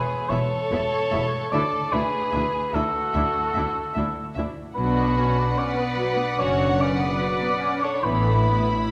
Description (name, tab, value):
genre	cinematic, emotional film score for orchestra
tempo	74 BPM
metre	4/4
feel	rubato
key	unclear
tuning	A4 = 440 Hz
part	dark cor anglais	second line	0.0-8.9 s	A4 to D5	-27 LUFS	equal	none
part	muted studio violin section	second line	0.0-8.9 s	E4 to B4	-33 LUFS	equal	none
part	concert harp	arpeggios	0.0-8.9 s	A2 to C#6	-36 LUFS	equal	none
part	muted studio violin section	melody	0.3-8.9 s	E5 to B5	-36 LUFS	equal	none
part	muted symphonic viola section	accompaniment	0.3-8.9 s	E3 to E4	-33 LUFS	equal	none
part	muted symphonic cello section	bass	0.3-8.8 s	D2 to B2	-32 LUFS	equal	none
part	muted symphonic double bass section	bass	0.3-8.8 s	E1 to D2	-32 LUFS	equal	none
room	wet concert hall reverb, RT60 2.2 s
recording	none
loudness	-23 LUFS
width	mono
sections	0.0-8.9 A section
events	none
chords	0.0 E5; 1.5 Dsus2; 4.8 Bmadd9; 8.0 Asus2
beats	0.71 | 1.53 2.33 3.15 3.96 | 4.76 5.58 6.39 7.21 | 8.04